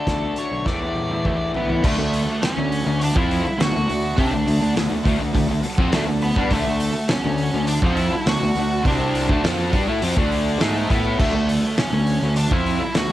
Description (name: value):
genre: quiet-loud alternative rock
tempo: 102 BPM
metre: 4/4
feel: straight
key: D major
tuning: A4 = 440 Hz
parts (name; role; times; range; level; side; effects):
- octave-fuzz lead guitar; melody; 0.0-13.1 s; A3 to F#5; -25 LUFS; right 1 dB; distortion
- twelve-string electric guitar; arpeggios; 0.0-1.8 s; D3 to F#4; -32 LUFS; right 2 dB; ensemble chorus
- distorted electric guitar; riff; 0.0-13.1 s; A2 to A4; -25 LUFS; left 5 dB; overdrive
- fuzz fingered electric bass; bass; 0.1-13.1 s; B1 to E3; -25 LUFS; equal; overdrive
- loose indie drum kit; drums; 0.1-13.1 s; crash cymbal, hi-hat, kick drum, snare drum, toms; -24 LUFS; equal; cassette tape
- clear symphonic string section; sustained chords; 1.8-13.1 s; F#4 to A5; -34 LUFS; right 1 dB; none
- overdriven semi-hollow guitar; riff; 1.8-13.1 s; C3 to A4; -28 LUFS; right 7 dB; harmonic tremolo
- thick fuzz guitar; riff; 1.8-13.1 s; C3 to A4; -28 LUFS; right 1 dB; none
room: studio ambience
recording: home recording on cassette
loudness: -18 LUFS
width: side -14 dB against mid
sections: 0.0-1.8 A section; 1.8-13.1 B section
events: drum fill 0.7-1.8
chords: 0.0 D; 0.7 Asus4/E; 1.8 D